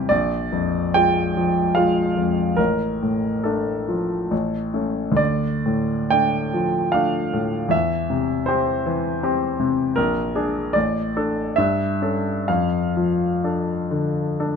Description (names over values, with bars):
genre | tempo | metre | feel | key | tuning
classical, romantic nocturne for solo piano | 61-81 BPM | 3/4 | rubato | D minor | A4 = 442 Hz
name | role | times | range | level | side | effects
clear grand piano | solo | 0.0-14.6 s | A1 to G5 | -19 LUFS | equal | none
room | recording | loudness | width
light reverb | close, detailed microphones | -19 LUFS | side -6 dB against mid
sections
0.0-14.6 A section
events
none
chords
0.1 Bb7; 2.6 Dm/A; 4.3 A; 5.2 Dm; 7.7 C/E; 10.0 Bb7; 10.7 D5/A; 11.6 A7/G; 12.5 Dm/F